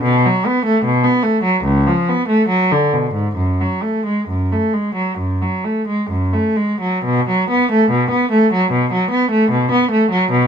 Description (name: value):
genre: classical, baroque-style suite movement for unaccompanied cello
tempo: 60-76 BPM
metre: 4/4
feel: rubato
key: F# minor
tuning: A4 = 440 Hz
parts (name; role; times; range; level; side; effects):
- rich cello; solo; 0.0-10.5 s; C#2 to B3; -14 LUFS; equal; none
room: light reverb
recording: close, detailed microphones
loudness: -14 LUFS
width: side -7 dB against mid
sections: 0.0-7.1 A section; 7.1-10.5 A section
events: none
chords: none